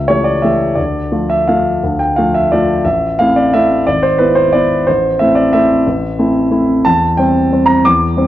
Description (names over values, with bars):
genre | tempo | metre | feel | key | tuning
classical, piano waltz | 179 BPM | 3/4 | uneven beats, rubato | unclear | A4 = 444 Hz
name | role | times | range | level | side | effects
warm grand piano | solo | 0.0-8.3 s | G#1 to D6 | -10 LUFS | equal | none
room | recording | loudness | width
moderate large studio reverb, RT60 1.2 s | dark, warm production, nothing above 7.7 kHz | -10 LUFS | side -13 dB against mid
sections
0.0-8.3 A section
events
none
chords
0.0 A7/C#; 0.8 Dm; 2.8 Am; 3.9 E7/G#; 4.9 Am; 6.8 C/E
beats
0.10 0.44 | 0.78 1.12 1.47 | 1.82 2.15 2.50 | 2.85 3.19 3.53 | 3.87 4.20 4.55 | 4.88 5.20 5.53 | 5.85 6.17 6.50 | 6.84 7.17 7.51 | 7.84 8.16